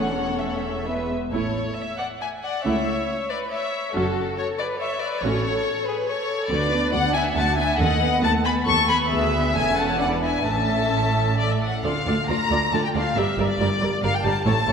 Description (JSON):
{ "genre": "quick classical-period movement for string orchestra", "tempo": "138 BPM", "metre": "3/4", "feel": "rubato", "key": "A major", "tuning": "A4 = 441 Hz", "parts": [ { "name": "muted chamber violin section", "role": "melody", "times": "0.0-14.7 s", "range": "A4 to C#6", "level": "-24 LUFS", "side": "left 3 dB", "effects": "none" }, { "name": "muted chamber violin section", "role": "second line", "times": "0.0-14.7 s", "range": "F#4 to A5", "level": "-28 LUFS", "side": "left 2 dB", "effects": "none" }, { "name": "muted symphonic viola section", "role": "accompaniment", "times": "0.0-14.7 s", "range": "G3 to B4", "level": "-27 LUFS", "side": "right 1 dB", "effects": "none" }, { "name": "muted chamber cello section", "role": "bass", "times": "0.0-14.7 s", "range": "D2 to C#3", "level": "-29 LUFS", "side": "right 2 dB", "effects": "none" }, { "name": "muted studio double bass section", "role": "bass", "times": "0.0-14.7 s", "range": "E1 to D#2", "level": "-28 LUFS", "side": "right 3 dB", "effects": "none" } ], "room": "wet concert hall reverb, RT60 1.8 s", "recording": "none", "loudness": "-20 LUFS", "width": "side -6 dB against mid", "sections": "0.0-1.3 A section; 1.3-11.8 B section; 11.8-14.7 C section", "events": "none", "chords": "0.0 A/E; 0.9 E; 1.3 A; 2.6 A/C#; 3.9 F#m; 5.2 F#m/A; 6.5 Bm/D; 7.8 B7/D#; 9.1 E7/D; 9.6 A/E; 10.0 E7; 10.5 A; 11.8 Dm; 13.2 Gm" }